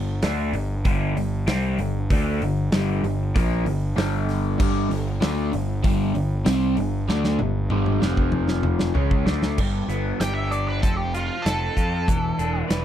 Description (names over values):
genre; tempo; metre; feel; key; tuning
classic rock; 96 BPM; 4/4; straight; G mixolydian; A4 = 440 Hz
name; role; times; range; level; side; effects
crunchy overdriven guitar; riff; 0.0-12.8 s; F2 to B4; -25 LUFS; left 1 dB; phaser
fuzz picked electric bass; bass; 0.0-12.8 s; E1 to F2; -25 LUFS; equal; overdrive
big rock drum kit; drums; 0.2-12.8 s; crash cymbal, hi-hat, kick drum, snare drum, toms; -24 LUFS; equal; none
octave-fuzz lead guitar; melody; 10.2-12.6 s; F4 to G5; -28 LUFS; right 1 dB; wah, distortion, slapback echo
room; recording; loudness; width
little or no reverb; dry, close 1970s-style studio recording; -20 LUFS; side -10 dB against mid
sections
0.0-9.6 A section; 9.6-12.8 B section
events
drum fill 7.1-9.6; lead electric guitar solo 9.6-12.8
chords
0.0 G5; 8.0 F5; 9.0 Aadd11/C#; 9.6 G; 10.8 F; 12.1 E5